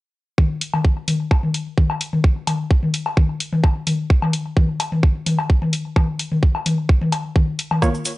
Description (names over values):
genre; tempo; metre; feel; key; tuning
minimal techno; 129 BPM; 4/4; straight; Bb minor; A4 = 439 Hz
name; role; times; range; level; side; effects
electronic kick drum; drums; 0.4-7.9 s; none; -15 LUFS; right 1 dB; none
electronic toms and woodblock; percussion; 0.4-7.9 s; none; -21 LUFS; left 2 dB; overdrive
electronic hi-hat; drums; 0.6-8.2 s; none; -25 LUFS; left 1 dB; none
mallet-like synth pluck; riff; 7.8-7.9 s; Bb3; -25 LUFS; right 4 dB; chorus, sidechain pumping
percussive organ stab; stabs; 7.8-7.9 s; Bb3 to Db5; -24 LUFS; right 1 dB; chorus, tape echo
cabasa; percussion; 7.8-8.2 s; none; -29 LUFS; right 1 dB; none
room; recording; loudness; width
light reverb; dry, gritty hardware recording, nothing above 10.5 kHz; -17 LUFS; side -19 dB against mid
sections
0.4-8.2 A section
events
none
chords
0.4 Bbm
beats
| 0.38 0.84 1.31 1.78 | 2.24 2.71 3.17 3.64 | 4.10 4.57 5.03 5.50 | 5.96 6.43 6.89 7.36 | 7.82